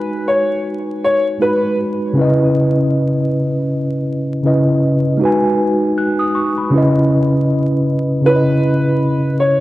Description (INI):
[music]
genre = hip hop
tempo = 79 BPM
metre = 4/4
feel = swing 58% on 16ths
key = C# minor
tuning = A4 = 440 Hz
[part]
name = warm upright piano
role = melody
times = 0.0-1.8, 8.3-9.6 s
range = B4 to C#5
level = -17 LUFS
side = left 1 dB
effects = cassette tape, analog delay
[part]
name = mellow tine electric piano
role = accompaniment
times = 0.0-9.6 s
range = C#3 to F#6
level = -14 LUFS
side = equal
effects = medium stereo tremolo, cassette tape
[sound]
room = moderate lush hall reverb, RT60 2.3 s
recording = home recording on cassette, vinyl crackle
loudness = -13 LUFS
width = side -16 dB against mid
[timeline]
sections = 0.0-8.2 A section; 8.2-9.6 B section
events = none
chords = 0.0 G#m7; 2.2 C#m9; 5.2 G#m7; 6.7 C#m9